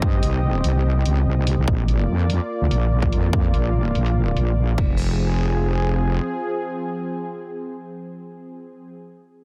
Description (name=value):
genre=heavy wobble dubstep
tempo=145 BPM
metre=4/4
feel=half-time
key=F minor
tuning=A4 = 440 Hz
part: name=lush unison pad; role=sustained chords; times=0.0-8.9 s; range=F3 to Eb5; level=-30 LUFS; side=equal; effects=chorus, vintage 12-bit sampler grit, sidechain pumping
part: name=wobble bass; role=bass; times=0.0-6.2 s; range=F1 to G2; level=-22 LUFS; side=equal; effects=chorus, overdrive
part: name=electronic kick drum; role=drums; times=0.0-4.9 s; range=none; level=-24 LUFS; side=equal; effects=none
part: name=dubstep drum kit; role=drums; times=0.2-4.9 s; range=crash cymbal, hi-hat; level=-37 LUFS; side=equal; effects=overdrive, low-pass filter on hats, low-pass filter on snare, low-pass filter on cymbals, low-pass filter on room
room=little or no reverb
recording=none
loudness=-21 LUFS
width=mono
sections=0.0-5.0 A section; 5.0-8.3 B section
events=none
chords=0.0 Cm; 1.7 Bb; 4.8 Fm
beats=| 0.02 0.43 0.85 1.26 | 1.68 2.09 2.50 2.92 | 3.33 3.75 4.16 4.57 | 4.99 5.40 5.81 6.23 | 6.64 7.05 7.47 7.88